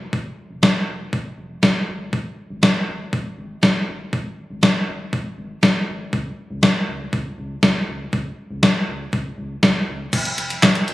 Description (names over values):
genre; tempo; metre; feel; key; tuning
synth-pop; 120 BPM; 4/4; straight; unclear; A4 = 439 Hz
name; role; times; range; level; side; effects
round analog bass; bass; 0.0-10.9 s; F1 to Db2; -31 LUFS; equal; none
gated 80s digital drum machine; drums; 0.1-10.9 s; crash cymbal, handclaps, hi-hat, kick drum, snare drum; -17 LUFS; equal; gated reverb, gated reverb snare, overdrive
room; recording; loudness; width
light reverb; recorded on a phone in the room, studio reverb; -18 LUFS; side -17 dB against mid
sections
0.0-10.1 A section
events
none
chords
none